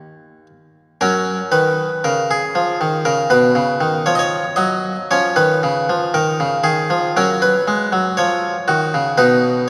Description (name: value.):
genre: classical, baroque-style suite movement for harpsichord.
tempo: 59 BPM.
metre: 4/4.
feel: rubato.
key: F# major.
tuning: A4 = 442 Hz.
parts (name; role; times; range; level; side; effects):
harpsichord; solo; 0.0-9.7 s; B2 to D#5; -17 LUFS; equal; none.
room: wet church reverb, RT60 3.1 s.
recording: recorded in a church or concert hall.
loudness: -17 LUFS.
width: mono.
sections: 0.0-1.0 A section; 1.0-9.7 A section.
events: none.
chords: 0.0 Eb5; 1.0 F#5; 5.1 C#; 7.2 F#5; 9.2 G#m/B (rootless).